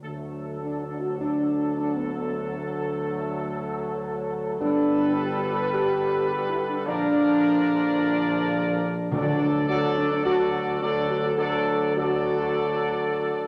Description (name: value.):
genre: classical.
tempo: 106 BPM.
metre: 4/4.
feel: straight.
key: D major.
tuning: A4 = 440 Hz.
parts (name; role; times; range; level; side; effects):
warm trumpet section; melody; 0.0-13.5 s; A4 to D5; -31 LUFS; equal; none.
bright trombone section; sustained chords; 0.0-13.5 s; D3 to G3; -35 LUFS; equal; none.
mellow French horn section; sustained chords; 0.0-13.4 s; A3 to B4; -28 LUFS; equal; none.
mellow tuba; bass; 0.0-13.5 s; G1 to D2; -34 LUFS; equal; none.
timpani; percussion; 9.1-9.9 s; D3; -33 LUFS; equal; none.
room: wet recital hall reverb, RT60 1.5 s.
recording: none.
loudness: -25 LUFS.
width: mono.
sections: 0.0-13.5 A section.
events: none.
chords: 0.0 D; 4.6 Gadd9; 6.9 Bb; 9.1 D.